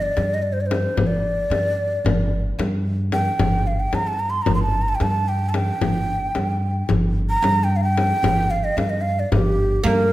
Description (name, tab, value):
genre	Turkish makam ensemble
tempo	223 BPM (eighths)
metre	9/8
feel	straight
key	G makam nihavent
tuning	A4 = 435 Hz
part	breathy mellow ney	melody	0.0-10.1 s	G4 to C6	-22 LUFS	right 1 dB	none
part	upright bass	bass	0.0-10.1 s	G1 to G2	-22 LUFS	equal	none
part	frame drum	percussion	0.2-10.0 s	none	-24 LUFS	left 2 dB	none
part	oud	second line	9.8-10.1 s	Bb3	-21 LUFS	right 4 dB	none
room	wet recital hall reverb, RT60 1.5 s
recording	none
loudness	-18 LUFS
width	side -15 dB against mid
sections	0.0-10.1 A section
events	none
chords	none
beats	0.17 0.44 0.71 | 0.98 1.25 1.52 1.79 2.06 2.32 2.59 2.86 3.13 | 3.40 3.67 3.94 4.21 4.48 4.75 5.01 5.28 5.55 | 5.82 6.09 6.36 6.63 6.90 7.17 7.43 7.70 7.97 | 8.24 8.51 8.78 9.05 9.32 9.59 9.85 10.12